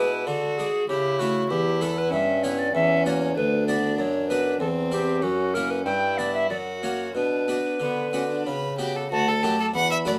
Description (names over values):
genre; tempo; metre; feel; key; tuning
classical, baroque-style sonata movement with continuo; 96 BPM; 3/4; rubato; B minor; A4 = 440 Hz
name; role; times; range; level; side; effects
tenor recorder; melody; 0.0-10.2 s; F#4 to B5; -28 LUFS; equal; none
clear violin; second line; 0.0-10.1 s; B3 to F#5; -31 LUFS; equal; none
harpsichord; accompaniment; 0.0-10.2 s; D2 to F#4; -32 LUFS; equal; none
mellow bassoon; bass; 0.0-10.2 s; D2 to D3; -30 LUFS; equal; none
room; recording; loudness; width
light reverb; none; -24 LUFS; mono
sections
0.0-9.1 A section; 9.1-10.2 A section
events
none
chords
0.0 G#dim/B; 0.9 A/C#; 1.5 C#m7b5/E; 2.7 F#7/E; 3.4 Bm/D; 4.6 C/E; 5.2 F#7; 5.9 G; 6.5 F#; 7.2 Bm; 9.1 D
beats
0.27 0.89 | 1.50 2.12 2.74 | 3.36 3.98 4.60 | 5.23 5.87 6.50 | 7.16 7.81 8.46 | 9.11 9.74